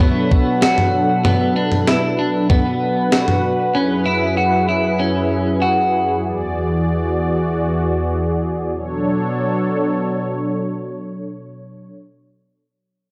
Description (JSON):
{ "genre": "dream pop", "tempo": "96 BPM", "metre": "4/4", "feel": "straight", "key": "B dorian", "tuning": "A4 = 441 Hz", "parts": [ { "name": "warm analog pad", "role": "sustained chords", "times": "0.0-11.9 s", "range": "E2 to D5", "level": "-22 LUFS", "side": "equal", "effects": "chorus" }, { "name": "clean electric guitar", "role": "arpeggios", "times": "0.0-6.2 s", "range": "B3 to F#4", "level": "-21 LUFS", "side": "equal", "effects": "lush chorus, analog delay" }, { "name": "gated 80s digital drum machine", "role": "drums", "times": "0.0-3.4 s", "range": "kick drum, snare drum, toms", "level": "-19 LUFS", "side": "equal", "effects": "gated reverb, gated reverb snare" }, { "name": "drifting glass-harmonics texture", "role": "texture", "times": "0.0-0.9 s", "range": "B4 to F#5", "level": "-35 LUFS", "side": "equal", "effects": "chorus, built-in reverb, analog delay" } ], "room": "light reverb", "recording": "dry, gritty hardware recording, cassette tape", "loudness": "-18 LUFS", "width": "mono", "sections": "0.0-8.7 A section; 8.7-11.2 B section", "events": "none", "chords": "0.0 Bm7; 3.7 F#7sus4; 6.2 E7; 8.7 Bm7" }